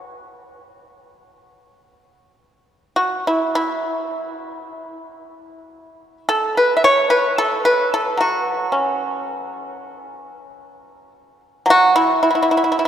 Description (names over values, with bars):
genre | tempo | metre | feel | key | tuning
chinese traditional, Chinese solo plucked strings | 50-57 BPM | 4/4 | rubato | unclear | A4 = 437 Hz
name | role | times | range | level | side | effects
pipa | solo | 0.0-12.9 s | F#3 to E5 | -16 LUFS | equal | none
room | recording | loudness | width
wet cathedral reverb, RT60 5.0 s | recorded in a church or concert hall | -16 LUFS | side -9 dB against mid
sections
0.0-3.0 A section; 3.0-12.9 B section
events
none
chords
none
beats
0.63 1.80 | 2.97 4.09 5.19 6.28 | 7.37 8.44 9.53 10.61 | 11.67 12.72